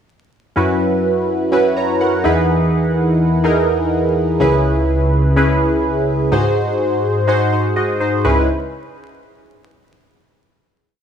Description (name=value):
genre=pop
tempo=125 BPM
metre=4/4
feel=straight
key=C# dorian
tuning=A4 = 438 Hz
part: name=warm analog keys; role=solo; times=0.6-8.5 s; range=C#2 to A#5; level=-14 LUFS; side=equal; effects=chorus, phaser, slapback echo
room=light reverb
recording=vinyl crackle, studio reverb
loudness=-14 LUFS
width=side -8 dB against mid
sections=0.6-8.2 pre-chorus; 8.2-10.2 final chord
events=none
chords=0.6 F#7sus4; 2.2 Emaj7; 4.4 C#m7; 6.3 G#7; 8.2 C#m7